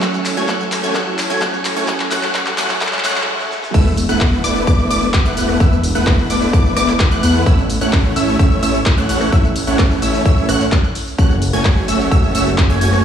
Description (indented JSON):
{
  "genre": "EDM, festival progressive house",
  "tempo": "129 BPM",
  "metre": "4/4",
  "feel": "straight",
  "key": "A major",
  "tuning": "A4 = 441 Hz",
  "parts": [
    { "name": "picked steel-string acoustic guitar", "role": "accompaniment", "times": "0.0-3.3 s", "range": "F#3 to A4", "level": "-24 LUFS", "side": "right 2 dB", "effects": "vintage 12-bit sampler grit, sidechain pumping, digital delay" },
    { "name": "lush unison pad", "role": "sustained chords", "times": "0.0-3.2 s", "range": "E3 to A4", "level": "-29 LUFS", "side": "right 1 dB", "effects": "chorus, sidechain pumping" },
    { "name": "wide unison pluck", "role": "arpeggios", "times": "0.0-13.0 s", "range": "D6 to G#6", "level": "-24 LUFS", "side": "left 1 dB", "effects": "phaser, sidechain pumping, digital delay" },
    { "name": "big supersaw lead", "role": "riff", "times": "0.0-13.0 s", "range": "A3 to G#5", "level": "-19 LUFS", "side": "right 1 dB", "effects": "sidechain pumping, digital delay" },
    { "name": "big-room dance drum kit", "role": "drums", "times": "0.0-13.0 s", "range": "crash cymbal, handclaps, hi-hat, rim click, snare drum, tambourine", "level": "-22 LUFS", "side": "left 1 dB", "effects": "high-pass filter on hats, high-pass filter on snare, high-pass filter on perc, high-pass filter on cymbals" },
    { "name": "electronic kick drum", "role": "drums", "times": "0.0-12.7 s", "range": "none", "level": "-14 LUFS", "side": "equal", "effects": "high-pass filter on kick" },
    { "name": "riser, swell and sub drop", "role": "sound effects", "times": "0.4-5.6 s", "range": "none", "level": "-28 LUFS", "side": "right 1 dB", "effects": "none" },
    { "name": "wide detuned saw bass", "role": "bass", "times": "3.7-13.0 s", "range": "E1 to E2", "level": "-20 LUFS", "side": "equal", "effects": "chorus, sidechain pumping" }
  ],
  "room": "light reverb",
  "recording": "played on a big sound system in a bare room, large studio reverb, high-pass filter, small room ambience",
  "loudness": "-13 LUFS",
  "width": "side -9 dB against mid",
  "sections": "0.0-3.7 A section; 3.7-13.0 B section",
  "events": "build-up 0.0-3.7; drum fill 0.0-3.3, 3.4-3.7; swell 2.8-3.7; stop 3.3-3.7; drop 3.7-13.0; impact 3.7-5.6",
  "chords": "0.0 A; 3.7 Esus4; 7.5 A; 11.2 F#m"
}